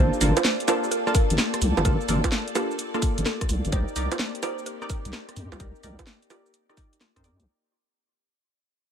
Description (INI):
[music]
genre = UK garage, two-step garage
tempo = 128 BPM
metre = 4/4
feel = swing 67% on 16ths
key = unclear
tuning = A4 = 439 Hz
[part]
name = mallet-like synth pluck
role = melody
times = 0.0-7.2 s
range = F4 to C5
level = -32 LUFS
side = right 1 dB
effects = phaser, wide subtle chorus, cassette tape, ping-pong delay
[part]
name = soft string machine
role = sustained chords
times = 0.1-7.4 s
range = Bb3 to D5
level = -35 LUFS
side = left 2 dB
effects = ensemble chorus, sidechain pumping
[part]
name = punchy chord stab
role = stabs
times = 0.0-7.4 s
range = Bb3 to D5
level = -29 LUFS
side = equal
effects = chorus, phaser, cassette tape, dub echo
[part]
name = deep soft wobble bass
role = bass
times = 0.0-7.5 s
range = G1 to F2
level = -25 LUFS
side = equal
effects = chorus
[part]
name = airy breathy pad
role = texture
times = 0.0-7.5 s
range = C4 to A5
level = -38 LUFS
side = right 3 dB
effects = chorus, phaser, sidechain pumping
[part]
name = garage drum kit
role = drums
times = 0.1-7.5 s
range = bongos, hi-hat, rim click, shaker, snare drum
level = -27 LUFS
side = right 2 dB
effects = none
[part]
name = electronic kick drum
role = drums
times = 1.1-7.2 s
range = none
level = -24 LUFS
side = equal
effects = none
[sound]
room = light reverb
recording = none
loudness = -22 LUFS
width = side -8 dB against mid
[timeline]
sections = 0.0-7.5 A section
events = drop 0.0-7.5; fade-out 0.0-7.5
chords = 0.0 Gm7; 3.7 Cm7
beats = 0.44 0.91 1.38 | 1.85 2.32 2.79 3.26 | 3.73 4.19 4.66 5.13 | 5.60 6.07 6.54 7.01